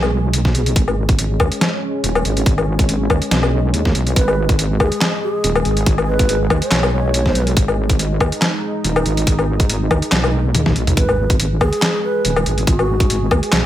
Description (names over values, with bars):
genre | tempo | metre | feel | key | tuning
deep dubstep | 141 BPM | 4/4 | swing 55% on 16ths, half-time | G# minor | A4 = 440 Hz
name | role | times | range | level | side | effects
dark analog pad | sustained chords | 0.0-13.7 s | G#3 to G#4 | -24 LUFS | equal | chorus
wobble bass | bass | 0.0-13.7 s | D#1 to D#2 | -18 LUFS | equal | chorus, tube saturation
trip hop sampler-style drum kit | drums | 0.0-13.6 s | handclaps, hi-hat, snare drum, toms, woodblock | -19 LUFS | left 2 dB | overdrive, studio reverb
electronic kick drum | drums | 0.5-13.4 s | none | -17 LUFS | equal | studio reverb
breathy mellow low ney | melody | 4.2-7.5, 11.0-13.3 s | F#4 to C#5 | -23 LUFS | right 2 dB | dub echo
room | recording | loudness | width
light reverb | none | -14 LUFS | side -12 dB against mid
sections
0.0-13.7 A section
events
drum fill 10.5-11.0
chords
0.0 G#m